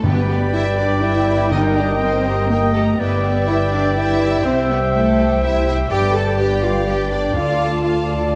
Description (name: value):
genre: cinematic, heroic adventure film score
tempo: 123 BPM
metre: 3/4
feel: straight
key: G mixolydian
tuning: A4 = 439 Hz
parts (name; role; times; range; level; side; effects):
- rich studio violin section; melody; 0.0-8.3 s; A4 to A5; -33 LUFS; equal; none
- mellow clarinet; second line; 0.0-8.4 s; Bb4 to D5; -31 LUFS; equal; none
- silver concert flute; second line; 0.0-8.4 s; G5 to A5; -30 LUFS; equal; none
- warm oboe; second line; 0.0-8.4 s; D5 to E5; -30 LUFS; equal; none
- warm symphonic violin section; second line; 0.0-8.4 s; B4 to B5; -34 LUFS; equal; none
- warm symphonic viola section; accompaniment; 0.0-8.4 s; D4 to E5; -33 LUFS; equal; none
- mellow French horn section; sustained chords; 0.0-8.4 s; G4 to D5; -28 LUFS; equal; none
- dark trumpet section; stabs; 0.0-8.4 s; D5 to E5; -27 LUFS; equal; none
- dark symphonic cello section; bass; 0.0-8.3 s; A3 to A4; -23 LUFS; equal; none
- rich studio double bass section; bass; 0.0-8.4 s; G1 to D2; -24 LUFS; equal; none
- timpani; percussion; 0.0-2.2 s; G2; -26 LUFS; equal; none
room: moderate scoring stage reverb, RT60 2.0 s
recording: dark, warm production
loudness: -18 LUFS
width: mono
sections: 0.0-8.4 A section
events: none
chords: 0.0 G; 1.5 Eb/G; 3.0 Em7/G; 4.4 C; 5.9 G; 7.4 Dm